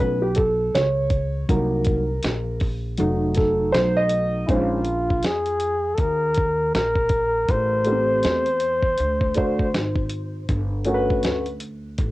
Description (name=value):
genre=hip hop, jazz-hop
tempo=80 BPM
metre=4/4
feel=swing 60% on 16ths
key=unclear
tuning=A4 = 436 Hz
part: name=dark grand piano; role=accompaniment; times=0.0-11.5 s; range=F#3 to Eb5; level=-22 LUFS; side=equal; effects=cassette tape
part: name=upright bass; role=bass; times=0.0-12.1 s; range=F1 to F2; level=-26 LUFS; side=equal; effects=none
part: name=dusty soul sampler-style drum kit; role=drums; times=0.3-12.1 s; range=hi-hat, kick drum, snare drum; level=-24 LUFS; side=equal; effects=cassette tape
part: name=breathy flugelhorn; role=melody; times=4.5-10.1 s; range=E4 to C5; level=-22 LUFS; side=left 1 dB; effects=cassette tape, analog delay
room=light reverb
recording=home recording on cassette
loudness=-19 LUFS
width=side -18 dB against mid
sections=0.0-4.5 A section; 4.5-12.1 B section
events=grand piano solo 0.0-4.5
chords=0.0 Gadd9(#11) (rootless); 1.5 Cm7b5; 3.0 F7b9; 4.5 Bb7sus4; 7.5 Am7; 9.0 D7; 10.5 Gmaj9#11